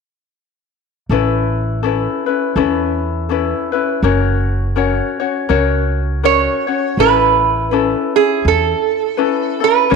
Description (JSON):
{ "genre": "Hawaiian", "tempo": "82 BPM", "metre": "4/4", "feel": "swing 58% on 8ths", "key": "A major", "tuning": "A4 = 440 Hz", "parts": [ { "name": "ukulele", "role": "accompaniment", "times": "1.1-10.0 s", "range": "C#4 to C#5", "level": "-17 LUFS", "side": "left 8 dB", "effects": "none" }, { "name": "upright bass", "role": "bass", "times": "1.1-10.0 s", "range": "F#1 to E2", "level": "-18 LUFS", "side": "right 1 dB", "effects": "none" }, { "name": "lap resonator guitar", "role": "melody", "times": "6.3-9.9 s", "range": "G#4 to C#5", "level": "-14 LUFS", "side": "right 10 dB", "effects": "none" } ], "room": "wet echo chamber reverb, RT60 1.7 s, studio reverb", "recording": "1960s-style stereo with parts hard left and right", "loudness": "-14 LUFS", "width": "side -4 dB against mid", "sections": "1.1-7.0 A section; 7.0-10.0 B section", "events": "none", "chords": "1.1 Aadd9; 4.0 F#; 7.0 Aadd9" }